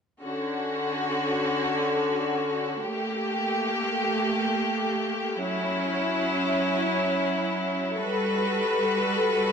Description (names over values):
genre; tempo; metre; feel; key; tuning
chillout; free time; none; none; D major; A4 = 440 Hz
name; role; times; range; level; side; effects
clear studio string section; sustained chords; 0.2-9.5 s; D3 to B4; -24 LUFS; equal; none
room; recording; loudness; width
wet plate reverb, RT60 3.6 s; none; -24 LUFS; side -6 dB against mid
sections
0.2-9.5 A section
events
none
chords
0.2 Dmaj7; 2.8 Gmadd9; 5.4 C#madd11/F#; 8.0 Gmaj9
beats
free time